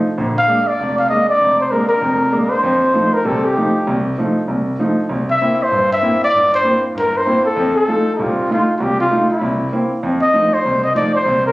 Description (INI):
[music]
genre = jazz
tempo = 195 BPM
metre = 4/4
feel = swing 60% on 8ths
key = F mixolydian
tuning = A4 = 440 Hz
[part]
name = clear grand piano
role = accompaniment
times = 0.0-11.5 s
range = F1 to F4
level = -18 LUFS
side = right 1 dB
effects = none
[part]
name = breathy trumpet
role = melody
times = 0.4-11.5 s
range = Eb4 to F5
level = -15 LUFS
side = equal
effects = plate reverb
[sound]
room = moderate small room reverb, RT60 0.5 s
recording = recorded on a phone in the room, club reverb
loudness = -14 LUFS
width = side -18 dB against mid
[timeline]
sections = 0.0-10.0 A section; 10.0-11.5 A section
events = none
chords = 0.2 Bb7; 2.6 F7; 5.1 C7; 7.6 F7; 9.4 C7; 10.0 F7